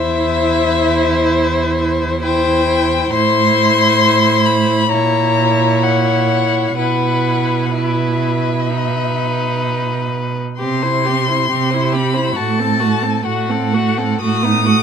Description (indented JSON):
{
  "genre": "classical, slow romantic movement for string quartet",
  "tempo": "60-72 BPM",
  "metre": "4/4",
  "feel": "rubato",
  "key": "unclear",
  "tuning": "A4 = 440 Hz",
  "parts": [
    { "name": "warm violin", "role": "melody", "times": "0.0-14.8 s", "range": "E5 to D#6", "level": "-19 LUFS", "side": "left 7 dB", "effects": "none" },
    { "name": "warm violin", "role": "second line", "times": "0.0-14.8 s", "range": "D#4 to C#5", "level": "-20 LUFS", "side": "left 4 dB", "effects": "none" },
    { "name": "rich viola", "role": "accompaniment", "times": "0.0-14.8 s", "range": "A3 to E4", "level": "-20 LUFS", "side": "right 1 dB", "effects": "none" },
    { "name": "warm cello", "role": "bass", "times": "0.0-14.8 s", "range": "E2 to C3", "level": "-18 LUFS", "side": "right 6 dB", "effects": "none" }
  ],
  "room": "light reverb",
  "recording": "close, detailed microphones",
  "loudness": "-13 LUFS",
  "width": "side -7 dB against mid",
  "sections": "0.0-14.8 A section",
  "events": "none",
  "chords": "0.0 C/E; 3.1 Am; 4.9 A#dim; 6.8 E5/B; 8.7 B; 10.6 C; 12.4 F#dim/A; 14.2 B7/A",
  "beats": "0.51 1.37 2.23 | 3.14 4.04 4.92 5.84 | 6.79 7.74 8.71 9.65 | 10.61 11.52 12.38 13.26 | 14.22"
}